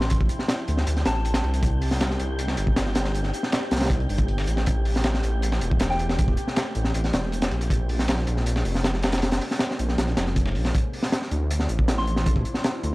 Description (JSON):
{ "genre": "drum and bass, jungle", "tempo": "158 BPM", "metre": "4/4", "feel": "straight", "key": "D minor", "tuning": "A4 = 444 Hz", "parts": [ { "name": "soft synth bell", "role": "melody", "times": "0.0-1.4, 5.9-6.1, 12.0-12.2 s", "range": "G5 to C6", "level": "-34 LUFS", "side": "equal", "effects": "chorus, dub echo" }, { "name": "warbly tape-like pad", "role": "sustained chords", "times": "0.0-12.9 s", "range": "F3 to G4", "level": "-37 LUFS", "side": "left 1 dB", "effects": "none" }, { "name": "dark detuned saw bass", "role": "bass", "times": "0.0-12.9 s", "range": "E1 to D2", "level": "-25 LUFS", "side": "equal", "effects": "none" }, { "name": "crunchy breakbeat drum kit", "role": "drums", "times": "0.0-12.9 s", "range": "hi-hat, kick drum, snare drum", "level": "-24 LUFS", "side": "equal", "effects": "none" }, { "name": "dusty soul sampler-style drum kit", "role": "drums", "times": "0.0-10.7 s", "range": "hi-hat, snare drum", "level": "-37 LUFS", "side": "equal", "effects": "high-pass filter on hats, high-pass filter on snare" }, { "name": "wind-like tuned noise texture", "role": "texture", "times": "0.0-10.8 s", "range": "G4 to G5", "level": "-37 LUFS", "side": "left 1 dB", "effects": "built-in reverb" } ], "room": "little or no reverb", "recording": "dry, gritty hardware recording, transformer saturation, vinyl crackle", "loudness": "-21 LUFS", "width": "side -20 dB against mid", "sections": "0.0-10.7 A section; 10.7-12.9 A section", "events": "drop 0.0-10.7, 10.7-12.9", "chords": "0.0 Dm9; 1.6 Cm9; 4.7 Am9; 7.7 Bbm9; 10.7 Dm9", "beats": "| 0.11 0.49 0.87 1.25 | 1.63 2.01 2.39 2.77 | 3.15 3.53 3.91 4.29 | 4.67 5.05 5.43 5.81 | 6.19 6.57 6.95 7.33 | 7.71 8.09 8.46 8.84 | 9.22 9.60 9.98 10.36 | 10.74 11.12 11.50 11.88 | 12.26 12.64" }